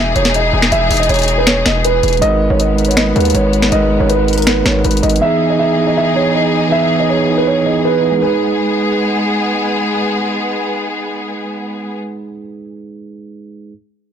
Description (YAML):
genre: hip hop, trap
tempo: 160 BPM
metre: 4/4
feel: half-time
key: G# minor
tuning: A4 = 440 Hz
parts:
  - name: dark concert grand piano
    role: melody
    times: 0.0-9.3 s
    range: A#4 to E5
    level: -16 LUFS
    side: right 2 dB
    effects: tape echo
  - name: rich symphonic string section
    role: sustained chords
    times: 0.0-12.0 s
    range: E3 to G#4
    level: -18 LUFS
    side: left 3 dB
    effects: none
  - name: distorted 808-style bass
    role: bass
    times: 0.0-5.2 s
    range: E1 to D#2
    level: -16 LUFS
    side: left 1 dB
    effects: distortion
  - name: trap drum kit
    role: drums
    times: 0.2-5.2 s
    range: finger snaps, hi-hat, snare drum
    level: -16 LUFS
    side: left 1 dB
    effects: none
  - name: mellow tine electric piano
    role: accompaniment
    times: 2.2-13.7 s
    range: E3 to B4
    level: -18 LUFS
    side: right 4 dB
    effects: none
room: light reverb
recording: blown-out, overdriven recording, overdrive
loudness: -12 LUFS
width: side -8 dB against mid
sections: 0.0-2.2 A section; 2.2-8.2 B section; 8.2-11.2 C section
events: none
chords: 0.0 Emaj7; 2.2 G#madd9; 5.2 Emaj7; 8.2 G#m